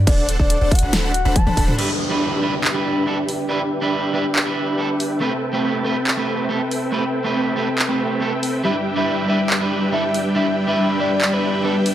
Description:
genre	future bass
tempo	140 BPM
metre	4/4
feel	half-time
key	E minor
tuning	A4 = 439 Hz
part	warm 808-style bass	bass	0.0-1.8 s	D1	-20 LUFS	equal	sidechain pumping
part	soft octave-layered synth lead	melody	0.1-1.6, 8.6-11.9 s	B4 to A5	-24 LUFS	left 2 dB	chorus, tremolo, sidechain pumping, tape echo
part	dense compressed supersaw	riff	0.1-11.9 s	G3 to B5	-21 LUFS	equal	sidechain pumping, low-pass filter
part	big-room dance drum kit	drums	0.1-11.9 s	crash cymbal, handclaps, hi-hat, snare drum, toms	-22 LUFS	equal	none
part	electronic kick drum	drums	0.1-1.7 s	none	-18 LUFS	equal	none
part	electric guitar at the edge of break-up	accompaniment	1.8-11.7 s	G3 to B4	-23 LUFS	right 3 dB	vintage 12-bit sampler grit, sidechain pumping, tape echo
part	downlifter	sound effects	1.8-5.2 s	none	-29 LUFS	right 1 dB	none
room	moderate digital room reverb, RT60 1.1 s, digital ambience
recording	none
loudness	-17 LUFS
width	side -11 dB against mid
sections	0.0-1.8 A section; 1.8-11.9 B section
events	drop 0.0-1.8; drum fill 1.4-1.8; filter sweep on supersaw synth 1.8-11.9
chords	0.1 D7; 1.8 Em7; 5.2 Am9; 8.6 Em7/G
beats	| 0.07 0.50 0.93 1.36 | 1.79 2.21 2.64 3.07 | 3.50 3.93 4.36 4.79 | 5.21 5.64 6.07 6.50 | 6.93 7.36 7.79 8.21 | 8.64 9.07 9.50 9.93 | 10.36 10.79 11.21 11.64

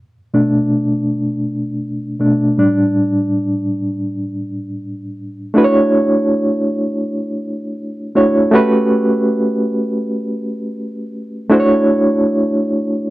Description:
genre	soul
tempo	81 BPM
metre	4/4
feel	swing 54% on 16ths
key	D major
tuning	A4 = 439 Hz
part	barky reed electric piano	solo	0.3-13.1 s	A2 to C#5	-14 LUFS	equal	overdrive, fast tremolo
room	light reverb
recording	dry, close 1970s-style studio recording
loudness	-14 LUFS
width	side -18 dB against mid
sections	0.0-5.6 A section; 5.6-13.1 B section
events	reed electric piano solo 0.0-5.6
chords	0.0 Bm7; 2.6 A7sus4; 5.6 Dmaj9; 8.5 Gmaj9#11; 11.5 Dmaj9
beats	0.34 1.08 1.83 | 2.58 3.32 4.07 4.81 | 5.56 6.30 7.05 7.79 | 8.54 9.28 10.02 10.77 | 11.51 12.25 13.00

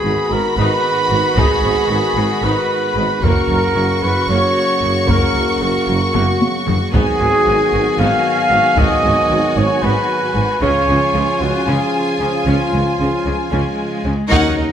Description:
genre	cinematic, epic orchestral film score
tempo	227 BPM (eighths)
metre	7/8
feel	straight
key	G# dorian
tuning	A4 = 440 Hz
part	warm symphonic violin section	melody	0.0-14.7 s	Eb5 to C#6	-22 LUFS	left 3 dB	none
part	clear symphonic violin section	second line	0.0-14.7 s	E#4 to Db5	-25 LUFS	left 2 dB	none
part	dark French horn section	sustained chords	0.0-14.7 s	Db3 to G#4	-27 LUFS	left 4 dB	none
part	mellow trombone section	sustained chords	0.0-14.0 s	C#3 to G#3	-25 LUFS	right 3 dB	none
part	dark trumpet section	stabs	0.0-14.0 s	E#4 to E#5	-18 LUFS	right 1 dB	none
part	clear symphonic cello section	bass	0.0-14.7 s	F#2 to Eb4	-23 LUFS	equal	none
part	rich symphonic double bass section	bass	0.0-14.7 s	F#1 to Eb2	-22 LUFS	right 2 dB	none
part	clear symphonic viola section	accompaniment	0.1-14.7 s	C#3 to Bb4	-28 LUFS	equal	none
part	warm tuba	bass	0.1-14.7 s	F#1 to Eb2	-26 LUFS	right 3 dB	none
part	taiko ensemble	drums	1.4-14.7 s	none	-20 LUFS	equal	none
room	moderate scoring stage reverb, RT60 1.7 s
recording	none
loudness	-13 LUFS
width	side -9 dB against mid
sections	0.0-14.3 A section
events	drum fill 6.1-6.9; band accent 14.3-14.7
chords	0.0 G#m7; 3.2 F#; 6.9 G#m7; 10.6 C#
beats	0.06 0.32 0.59 0.85 1.12 | 1.38 1.65 1.91 2.17 2.44 2.70 2.97 | 3.23 3.50 3.76 4.03 4.29 4.55 4.82 | 5.08 5.35 5.61 5.88 6.14 6.40 6.67 | 6.93 7.20 7.46 7.72 7.99 8.25 8.52 | 8.78 9.04 9.31 9.57 9.84 10.10 10.36 | 10.63 10.89 11.15 11.42 11.68 11.94 12.21 | 12.47 12.73 13.00 13.26 13.52 13.79 14.05 | 14.31 14.58

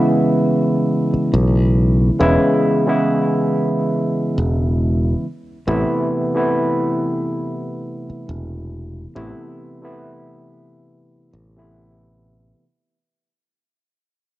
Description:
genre	vaporwave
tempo	69 BPM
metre	4/4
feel	swing 55% on 16ths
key	unclear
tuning	A4 = 440 Hz
part	barky tine electric piano	accompaniment	0.0-12.7 s	C3 to E4	-18 LUFS	equal	lush chorus, cassette tape, tape echo
part	modern bright fingered electric bass	bass	1.1-12.5 s	E1 to B1	-18 LUFS	equal	none
room	light reverb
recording	home recording on cassette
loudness	-16 LUFS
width	side -16 dB against mid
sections	0.0-12.6 A section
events	fade-out 0.0-12.6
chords	0.0 E6; 5.2 Amadd9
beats	0.46 1.33 | 2.20 3.07 3.94 4.81 | 5.68 6.55 7.42 8.29 | 9.15 10.03 10.89 11.76

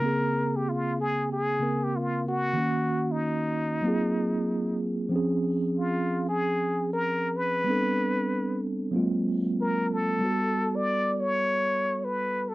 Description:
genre	hip hop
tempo	94 BPM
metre	4/4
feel	swing 62% on 16ths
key	unclear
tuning	A4 = 440 Hz
part	trumpet with plunger mute	melody	0.0-12.5 s	Eb4 to D5	-28 LUFS	left 1 dB	none
part	mellow tine electric piano	accompaniment	0.0-12.5 s	Db3 to Bb4	-27 LUFS	right 1 dB	medium stereo tremolo
room	light reverb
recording	dry, close 1970s-style studio recording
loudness	-25 LUFS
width	side -18 dB against mid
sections	0.0-12.5 A section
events	none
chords	0.0 Bbm9; 2.6 Ebm7; 3.8 Ab13; 5.1 Dbmaj7; 7.7 Am11; 9.0 Ab13; 10.2 Gmaj9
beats	| 0.02 0.65 1.29 1.93 | 2.57 3.21 3.85 4.48 | 5.12 5.76 6.40 7.04 | 7.67 8.31 8.95 9.59 | 10.23 10.87 11.51 12.14

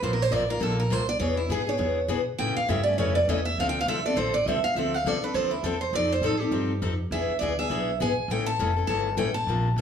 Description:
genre	acoustic string swing (jazz manouche)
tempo	203 BPM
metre	4/4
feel	swing 58% on 8ths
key	D minor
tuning	A4 = 442 Hz
part	picked steel-string acoustic guitar	second line	0.0-9.7 s	E4 to A5	-27 LUFS	right 3 dB	slapback echo
part	picked steel-string acoustic guitar	accompaniment	0.0-9.8 s	C3 to Bb4	-28 LUFS	left 5 dB	none
part	upright bass	bass	0.0-9.8 s	F1 to B2	-30 LUFS	equal	none
room	moderate studio reverb, RT60 0.7 s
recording	small room ambience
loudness	-23 LUFS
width	side -8 dB against mid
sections	0.0-4.8 A section; 4.8-9.8 A section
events	steel-string acoustic guitar solo 0.0-9.8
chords	0.0 Bbsus2; 1.2 E7; 2.4 A7; 3.6 Dm7; 5.9 F7; 7.1 E7; 8.3 A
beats	| 0.04 0.33 0.63 0.92 | 1.22 1.51 1.81 2.10 | 2.40 2.69 2.99 3.29 | 3.58 3.88 4.17 4.46 | 4.76 5.06 5.35 5.65 | 5.94 6.24 6.53 6.83 | 7.12 7.42 7.71 8.01 | 8.30 8.60 8.89 9.19 | 9.48 9.78

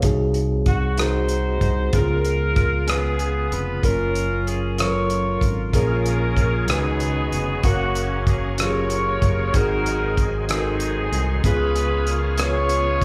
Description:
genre	slow gospel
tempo	63 BPM (dotted quarters)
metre	6/8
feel	straight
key	F# major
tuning	A4 = 440 Hz
part	tine electric piano	accompaniment	0.0-13.0 s	G#2 to E#5	-27 LUFS	equal	none
part	fingered electric bass	bass	0.0-13.0 s	E#1 to C#2	-27 LUFS	equal	none
part	warm soul drum kit	drums	0.0-13.0 s	hi-hat, kick drum, rim click	-25 LUFS	equal	none
part	clear saxophone section	melody	0.7-13.0 s	A#3 to C#5	-27 LUFS	equal	none
part	bright tonewheel organ	sustained chords	5.7-13.0 s	C#3 to G#4	-33 LUFS	equal	slow rotary speaker, overdrive, chorus vibrato
room	moderate large studio reverb, RT60 1.5 s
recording	band playing live in one room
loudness	-21 LUFS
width	mono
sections	0.0-13.0 A section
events	none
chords	0.0 G#7/B#; 1.9 C#7; 3.8 F#maj7; 5.7 A#m7; 6.7 C#9sus4; 7.6 F#maj7; 9.5 G#7; 11.4 C#7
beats	| 0.03 0.98 | 1.94 2.89 | 3.84 4.79 | 5.74 6.69 | 7.64 8.59 | 9.54 10.49 | 11.44 12.39

